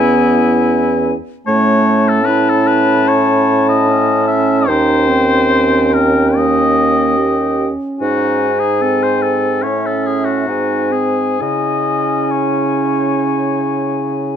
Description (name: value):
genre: classical, slow romantic movement for wind quintet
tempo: 62-77 BPM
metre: 4/4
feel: rubato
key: C# minor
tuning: A4 = 436 Hz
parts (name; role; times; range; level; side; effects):
- concert flute; melody; 0.0-14.4 s; E5 to A5; -20 LUFS; left 12 dB; none
- warm oboe; second line; 0.0-14.4 s; E4 to E5; -18 LUFS; left 4 dB; none
- mellow clarinet; accompaniment; 0.0-14.4 s; A3 to G4; -20 LUFS; right 5 dB; none
- warm French horn; accompaniment; 0.0-14.4 s; B#3 to E4; -20 LUFS; right 1 dB; none
- warm bassoon; bass; 0.0-14.4 s; D#2 to C#3; -17 LUFS; right 2 dB; none
room: light reverb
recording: dark, warm production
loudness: -12 LUFS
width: side -8 dB against mid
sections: 0.0-14.4 A section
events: none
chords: 0.0 C#m/E; 1.5 A; 4.7 D#7; 8.0 G#; 9.6 A; 10.5 G#; 11.4 C#m